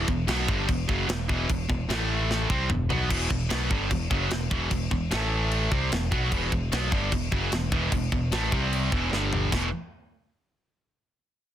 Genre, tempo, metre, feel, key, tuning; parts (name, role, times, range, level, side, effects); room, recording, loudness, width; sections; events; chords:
heavy metal; 150 BPM; 4/4; straight; E minor; A4 = 441 Hz
distorted electric guitar; riff; 0.0-9.7 s; E2 to C4; -28 LUFS; right 1 dB; overdrive
modern bright picked electric bass; bass; 0.0-9.7 s; E1 to C2; -29 LUFS; equal
tight metal drum kit; drums; 0.1-9.6 s; crash cymbal, kick drum, snare drum, toms; -29 LUFS; equal; soft clipping on kick, soft clipping on snare
little or no reverb; dense, heavily limited modern master; -24 LUFS; side -11 dB against mid
0.0-9.5 A section; 9.5-11.1 B section
drum fill 2.3-3.1, 9.1-9.5
0.0 Em; 1.9 A5; 2.5 Em; 5.1 A5; 5.7 Em; 8.5 C5; 8.9 E5; 9.1 G5; 9.5 E5